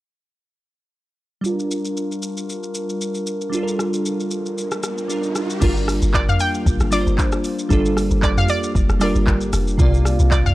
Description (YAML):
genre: amapiano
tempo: 115 BPM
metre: 4/4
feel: swing 55% on 16ths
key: G minor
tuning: A4 = 441 Hz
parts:
  - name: glassy digital keys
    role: accompaniment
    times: 1.4-10.5 s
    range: C3 to D5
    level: -23 LUFS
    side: right 2 dB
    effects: chorus, low-pass filter
  - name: glass harmonica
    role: sustained chords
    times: 1.4-10.5 s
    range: G3 to F5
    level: -26 LUFS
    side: left 2 dB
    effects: sidechain pumping, low-pass filter
  - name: afro-pop drum kit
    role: drums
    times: 1.4-10.5 s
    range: crash cymbal, handclaps, hi-hat, kick drum, rim click, shaker, toms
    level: -22 LUFS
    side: equal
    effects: none
  - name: riser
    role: sound effects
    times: 4.1-5.6 s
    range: none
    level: -34 LUFS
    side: right 1 dB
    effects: none
  - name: deep log drum bass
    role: bass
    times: 5.6-10.5 s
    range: F1 to C2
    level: -19 LUFS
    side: equal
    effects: none
  - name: analog pluck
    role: melody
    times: 6.1-10.5 s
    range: D5 to G5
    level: -24 LUFS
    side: equal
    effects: chorus, analog delay
room: little or no reverb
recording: dry, gritty hardware recording, transformer saturation, cassette tape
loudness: -17 LUFS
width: side -17 dB against mid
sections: 1.4-5.6 A section; 5.6-10.5 B section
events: filter sweep 1.4-5.6; kick muted 3.5-5.6; riser 4.1-5.6; drop 5.6-10.5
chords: 1.4 Gm7; 9.8 C9sus4